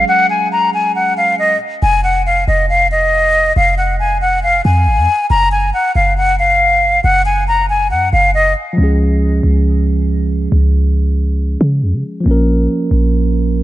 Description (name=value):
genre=hip hop, trap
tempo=138 BPM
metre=4/4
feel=half-time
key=F phrygian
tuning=A4 = 440 Hz
part: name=concert flute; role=melody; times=0.0-8.5 s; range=Eb5 to Bb5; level=-12 LUFS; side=left 1 dB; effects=low-pass filter
part: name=mellow tine electric piano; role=accompaniment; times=0.0-1.6, 8.7-13.6 s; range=F3 to Bb4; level=-18 LUFS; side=moving between left 2 dB and right 9 dB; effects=auto-pan, low-pass filter
part: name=clean 808-style bass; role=bass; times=0.0-13.6 s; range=F1 to Db3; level=-14 LUFS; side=equal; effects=none
room=light reverb, small room ambience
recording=nothing above 10.4 kHz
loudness=-11 LUFS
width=side -14 dB against mid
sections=0.0-1.8 A section; 1.8-13.6 B section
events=filter sweep 0.0-1.8; stop 0.1-1.8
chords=0.0 Gbsus2; 1.8 Fm; 5.3 Gbmaj7(no3); 8.8 Db; 12.3 Bbm